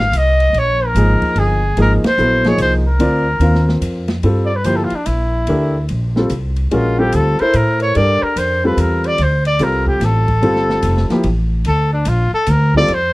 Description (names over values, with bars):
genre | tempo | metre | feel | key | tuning
modal jazz | 146 BPM | 3/4 | swing 65% on 8ths | G dorian from 4.2 s | A4 = 441 Hz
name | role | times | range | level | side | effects
breathy trumpet | melody | 0.0-13.1 s | D4 to F5 | -17 LUFS | equal | none
upright bass | bass | 0.0-13.1 s | F1 to A2 | -16 LUFS | equal | none
open jazz drum kit | drums | 0.0-13.0 s | hi-hat, kick drum, ride cymbal, snare drum | -27 LUFS | equal | none
warm baby grand piano | accompaniment | 1.0-12.9 s | F3 to F5 | -18 LUFS | left 1 dB | none
room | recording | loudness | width
small room ambience | dry, close 1970s-style studio recording | -13 LUFS | side -20 dB against mid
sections
0.0-4.2 A section; 4.2-13.1 B section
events
band accent 2.0; trumpet solo 4.2-13.1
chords
0.0 Ebsus4; 3.0 Cm11/D; 4.2 Gm11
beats
0.13 | 0.54 0.95 1.36 | 1.78 2.19 2.60 | 3.01 3.42 3.83 | 4.25 4.66 5.07 | 5.48 5.89 6.30 | 6.72 7.13 7.54 | 7.95 8.36 8.78 | 9.19 9.60 10.01 | 10.42 10.84 11.25 | 11.66 12.07 12.48 | 12.90